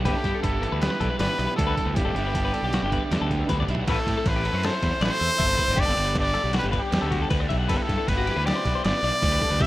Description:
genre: math rock and midwest emo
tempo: 157 BPM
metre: 5/4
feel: straight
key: unclear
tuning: A4 = 442 Hz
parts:
  - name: bright trumpet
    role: melody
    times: 0.0-9.7 s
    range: G4 to E5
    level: -26 LUFS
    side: equal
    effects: slapback echo
  - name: twelve-string electric guitar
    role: accompaniment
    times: 0.0-3.9 s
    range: D2 to E4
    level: -33 LUFS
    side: right 6 dB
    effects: tremolo
  - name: twelve-string electric guitar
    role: arpeggios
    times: 0.0-9.7 s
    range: F#4 to F#5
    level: -31 LUFS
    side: left 7 dB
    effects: wide subtle chorus, slapback echo
  - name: overdriven electric guitar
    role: riff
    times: 0.0-9.7 s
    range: C3 to A4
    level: -32 LUFS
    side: right 1 dB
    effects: none
  - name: fuzz fingered electric bass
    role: bass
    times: 0.0-9.7 s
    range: G1 to A2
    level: -27 LUFS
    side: equal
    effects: overdrive
  - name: lo-fi sampler-style drum kit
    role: drums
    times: 0.1-9.7 s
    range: crash cymbal, hi-hat, kick drum, ride cymbal, snare drum, toms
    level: -27 LUFS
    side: equal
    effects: overdrive
room: little or no reverb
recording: rough home demo mix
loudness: -21 LUFS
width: side -16 dB against mid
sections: 0.0-3.9 A section; 3.9-9.7 B section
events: drum fill 3.5-3.9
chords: 0.1 Em7/G; 2.0 G6; 3.9 Am7; 5.8 Gmaj7; 7.7 Em7/G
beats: | 0.06 0.44 0.82 1.20 1.58 | 1.96 2.34 2.73 3.11 3.49 | 3.87 4.25 4.63 5.01 5.39 | 5.78 6.16 6.54 6.92 7.30 | 7.69 8.07 8.45 8.84 9.22 | 9.60

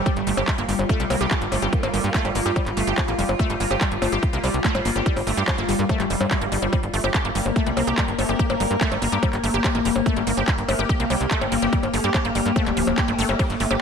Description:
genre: psychedelic trance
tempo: 144 BPM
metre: 4/4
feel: straight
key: G minor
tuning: A4 = 440 Hz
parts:
  - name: evolving wavetable pad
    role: sustained chords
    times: 0.0-13.8 s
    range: G3 to Bb4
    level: -26 LUFS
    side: left 2 dB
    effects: chorus, built-in reverb, phaser, sidechain pumping
  - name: wide unison pluck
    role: riff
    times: 0.1-13.7 s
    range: F3 to G4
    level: -26 LUFS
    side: moving between left 3 dB and right 3 dB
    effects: auto-pan, sidechain pumping, tape echo
  - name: electronic kick drum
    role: drums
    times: 0.1-13.5 s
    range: none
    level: -23 LUFS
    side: equal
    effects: none
  - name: techno drum kit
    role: drums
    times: 0.1-13.8 s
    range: handclaps, hi-hat, percussion blips, ride cymbal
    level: -27 LUFS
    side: left 1 dB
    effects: none
  - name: tight sequencer bass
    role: bass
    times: 0.2-13.8 s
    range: D1 to G2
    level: -25 LUFS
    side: equal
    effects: none
  - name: formant-sweep wobble bass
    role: second line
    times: 1.6-2.1, 5.0-8.8, 11.6-12.6 s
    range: Bb3 to C4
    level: -36 LUFS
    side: right 3 dB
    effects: none
  - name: swell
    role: sound effects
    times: 6.0-6.7 s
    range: none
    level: -34 LUFS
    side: right 5 dB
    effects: none
room: moderate plate reverb, RT60 1.4 s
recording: dreamy mix soaked in reverb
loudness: -19 LUFS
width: side -6 dB against mid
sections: 0.0-13.8 A section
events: swell 6.0-6.7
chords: 0.0 G5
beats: | 0.06 0.48 0.89 1.31 | 1.73 2.14 2.56 2.98 | 3.39 3.81 4.23 4.64 | 5.06 5.48 5.89 6.31 | 6.73 7.14 7.56 7.98 | 8.39 8.81 9.23 9.64 | 10.06 10.48 10.89 11.31 | 11.73 12.14 12.56 12.98 | 13.39 13.81

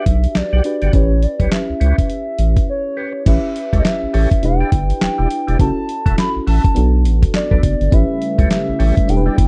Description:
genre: R&B, new jack swing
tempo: 103 BPM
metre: 4/4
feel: swing 60% on 16ths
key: unclear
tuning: A4 = 443 Hz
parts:
  - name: hollow clarinet-like synth lead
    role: melody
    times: 0.0-9.5 s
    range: C#5 to B5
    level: -26 LUFS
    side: equal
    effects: chorus, slapback echo
  - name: FM electric piano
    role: accompaniment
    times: 0.0-9.5 s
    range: B3 to B4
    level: -25 LUFS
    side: equal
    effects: chorus
  - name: percussive tonewheel organ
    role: stabs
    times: 0.0-9.4 s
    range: E4 to F#5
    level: -30 LUFS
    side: equal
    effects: overdrive, chorus vibrato, slow rotary speaker, slapback echo
  - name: round analog bass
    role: bass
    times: 0.1-9.5 s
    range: E1 to C#2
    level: -17 LUFS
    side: equal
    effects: none
  - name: dusty soul sampler-style drum kit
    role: drums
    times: 0.1-9.5 s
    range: crash cymbal, handclaps, hi-hat, kick drum, snare drum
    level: -18 LUFS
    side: equal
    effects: none
  - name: lush unison pad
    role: sustained chords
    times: 7.9-9.5 s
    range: C#3 to E4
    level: -26 LUFS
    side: equal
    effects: chorus
room: digital ambience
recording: dry, close 1970s-style studio recording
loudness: -16 LUFS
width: mono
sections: 0.0-3.3 A section; 3.3-9.5 B section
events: break 2.7-3.3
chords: 0.0 Em9; 0.9 A9; 4.4 Em7; 5.6 F#m7; 6.8 Bm7; 7.9 A7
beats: 0.35 | 0.93 1.51 2.10 2.68 | 3.26 3.85 4.43 5.01 | 5.59 6.18 6.76 7.34 | 7.92 8.51 9.09

